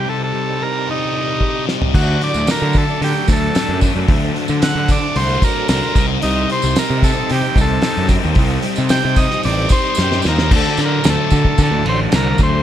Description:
psychedelic rock; 112 BPM; 4/4; straight; D phrygian dominant; A4 = 440 Hz
combo organ; melody; 0.0-12.6 s; Eb4 to G5; -21 LUFS; equal; dub echo
mellow tonewheel organ; sustained chords; 0.0-12.6 s; D4 to Eb5; -29 LUFS; right 5 dB; slow rotary speaker, chorus vibrato
thick fuzz guitar; riff; 0.0-12.6 s; C3 to Eb4; -20 LUFS; left 1 dB; distortion, phaser, dub echo
cloth-damped thuddy drum kit; drums; 1.4-12.5 s; crash cymbal, hi-hat, kick drum, snare drum, toms; -18 LUFS; equal
fuzz picked electric bass; bass; 1.9-12.6 s; A1 to D3; -19 LUFS; equal; overdrive
tambourine; percussion; 1.9-12.5 s; -32 LUFS; right 10 dB; dub echo
studio reverb; echo-heavy mix; -14 LUFS; side -11 dB against mid
0.0-1.9 A section; 1.9-10.5 B section; 10.5-12.6 C section
break 0.0-1.9; drum fill 1.4-1.9, 10.0-10.5
0.0 Cm; 1.9 D; 6.0 Cm; 10.5 D
0.34 0.88 1.41 | 1.95 2.48 3.02 3.55 | 4.09 4.62 5.15 5.69 | 6.22 6.76 7.29 7.83 | 8.36 8.90 9.43 9.97 | 10.51 11.04 11.58 12.11

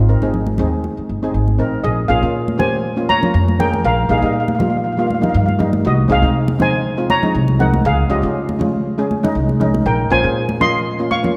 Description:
calypso; 120 BPM; 4/4; straight; Ab major; A4 = 442 Hz
steel pan; melody; 0.0-11.4 s; Gb4 to Db6; -21 LUFS; equal
steel pan; accompaniment; 0.0-11.4 s; G3 to Bb4; -22 LUFS; equal
upright bass; bass; 0.0-11.2 s; G1 to Db3; -21 LUFS; equal
congas; percussion; 0.2-11.4 s; -25 LUFS; equal
wet concert hall reverb, RT60 2.4 s; -17 LUFS; mono
0.0-1.8 A section; 1.8-11.4 B section
0.0 Abadd9; 1.8 Bbm7; 3.8 Ebadd9/Bb; 5.8 Ab7/C; 7.8 Dbadd9; 9.9 Bbm7
0.33 0.84 1.34 | 1.84 2.34 2.84 3.34 | 3.84 4.34 4.84 5.34 | 5.85 6.35 6.85 7.35 | 7.85 8.35 8.85 9.35 | 9.86 10.36 10.86 11.36

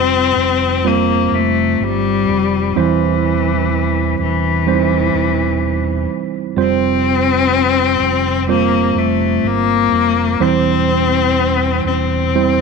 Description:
pop ballad; 63 BPM; 4/4; straight; A4 = 440 Hz
rich cello; melody; 0.0-12.6 s; E3 to C4; -16 LUFS; left 10 dB; slapback echo
tine electric piano; accompaniment; 0.0-12.6 s; E3 to C5; -18 LUFS; right 13 dB
fingered electric bass; bass; 0.0-12.6 s; E1 to G1; -21 LUFS; right 1 dB
light reverb, studio reverb; 1960s-style stereo with parts hard left and right; -13 LUFS; side -4 dB against mid
0.0-12.6 A section
0.0 Fsus2; 2.8 C/E; 6.6 Fsus2; 10.4 C/E
0.84 1.80 | 2.76 3.72 4.67 5.62 | 6.57 7.52 8.48 9.44 | 10.40 11.37 12.34

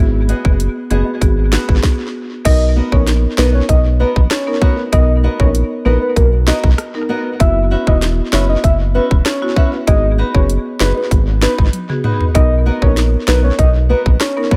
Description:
dancehall; 97 BPM; 4/4; straight; A4 = 440 Hz
marimba with medium mallets; accompaniment; 0.0-14.5 s; B3 to A#4; -25 LUFS; equal; tape echo
round analog bass; bass; 0.0-14.2 s; E1 to B1; -17 LUFS; equal
flamenco guitar; arpeggios; 0.3-14.6 s; B3 to E5; -26 LUFS; equal; tape echo
island pop drum kit; drums; 0.3-14.6 s; crash cymbal, hi-hat, kick drum, rim click, snare drum, toms; -17 LUFS; equal; tape echo
soft octave-layered synth lead; melody; 2.5-14.6 s; A#4 to E5; -22 LUFS; equal; chorus, tape echo
digital ambience; echo-heavy mix; -14 LUFS; mono
0.0-2.5 A section; 2.5-14.6 B section
stop 1.8-2.5; drum fill 11.7-12.3
0.0 G#m7; 2.5 Bmaj7; 7.4 F#7sus4; 9.9 G#m7; 12.3 Bmaj7
0.60 1.22 1.83 | 2.45 3.07 3.69 4.31 | 4.93 5.55 6.16 6.78 | 7.40 8.02 8.64 9.26 | 9.88 10.49 11.11 11.73 | 12.35 12.97 13.59 14.21

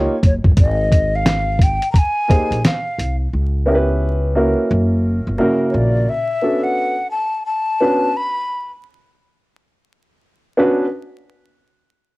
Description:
hip hop, jazz-hop; 87 BPM; 4/4; swing 61% on 16ths; A4 = 438 Hz
warm upright piano; accompaniment; 0.0-10.8 s; C#3 to C#5; -17 LUFS; right 1 dB; cassette tape, plate reverb
upright bass; bass; 0.0-6.0 s; F#1 to C#2; -19 LUFS; equal
dusty soul sampler-style drum kit; drums; 0.2-3.2 s; hi-hat, kick drum, snare drum; -14 LUFS; equal; cassette tape
breathy jazz flute; melody; 0.3-8.7 s; C#5 to B5; -20 LUFS; left 1 dB; plate reverb
light reverb; home recording on cassette, vinyl crackle; -15 LUFS; side -20 dB against mid
0.0-11.6 A section
0.0 D#7; 0.6 G#; 3.3 C#m7b5; 4.7 F#7; 6.1 Bm7
| 0.57 1.26 1.95 2.64 | 3.33 4.02 4.71 5.40 | 6.08 6.78 7.46 8.15 | 8.84 9.53 10.22

